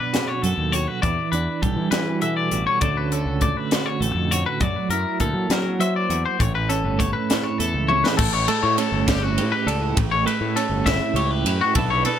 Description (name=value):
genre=math rock and midwest emo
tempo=67 BPM (dotted quarters)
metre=6/8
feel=straight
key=unclear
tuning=A4 = 440 Hz
part: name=twelve-string electric guitar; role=accompaniment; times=0.0-12.2 s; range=A2 to C5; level=-25 LUFS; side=right 7 dB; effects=tremolo
part: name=twangy electric guitar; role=arpeggios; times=0.0-12.2 s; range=F#4 to E5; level=-24 LUFS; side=left 5 dB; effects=digital delay
part: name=crisp fusion drum kit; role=drums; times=0.1-12.2 s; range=crash cymbal, hi-hat, kick drum, ride cymbal, snare drum, toms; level=-24 LUFS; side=left 1 dB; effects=none
part: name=growling fingered electric bass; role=bass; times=0.4-12.0 s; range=G1 to F#3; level=-25 LUFS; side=equal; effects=overdrive
room=light reverb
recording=none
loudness=-19 LUFS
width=side -9 dB against mid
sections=0.0-8.2 A section; 8.2-12.2 B section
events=drum fill 7.9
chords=0.0 Bm9; 1.0 Em9; 2.8 Dmaj7; 4.6 F#7alt; 6.4 A9; 8.2 Bm11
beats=0.13 | 1.03 1.92 | 2.82 3.71 | 4.61 5.50 | 6.40 7.29 | 8.19 9.08 | 9.97 10.86 | 11.76